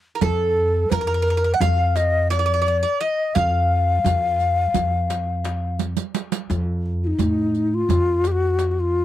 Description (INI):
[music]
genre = Turkish makam ensemble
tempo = 172 BPM (eighths)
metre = 9/8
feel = straight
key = F makam hicaz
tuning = A4 = 440 Hz
[part]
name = breathy mellow ney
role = melody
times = 0.2-9.0 s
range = Eb4 to Gb5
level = -21 LUFS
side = left 3 dB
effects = none
[part]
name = Greek bouzouki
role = second line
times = 0.2-5.8 s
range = A4 to Gb5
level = -25 LUFS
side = right 8 dB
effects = none
[part]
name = upright bass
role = bass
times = 0.2-9.0 s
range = F2 to A2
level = -22 LUFS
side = right 1 dB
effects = none
[part]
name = darbuka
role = percussion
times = 0.2-9.0 s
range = none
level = -27 LUFS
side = left 1 dB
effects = none
[part]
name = riq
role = percussion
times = 0.2-8.8 s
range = none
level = -27 LUFS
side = right 21 dB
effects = none
[sound]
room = little or no reverb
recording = dry, close 1970s-style studio recording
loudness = -18 LUFS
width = side -13 dB against mid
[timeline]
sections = 0.0-6.5 A section; 6.5-9.0 B section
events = drum fill 5.8-6.5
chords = none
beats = | 0.22 0.57 0.92 1.26 1.61 1.96 2.31 2.66 3.01 | 3.36 3.71 4.05 4.40 4.75 5.10 5.45 5.80 6.15 | 6.50 6.85 7.20 7.55 7.89 8.24 8.59 8.94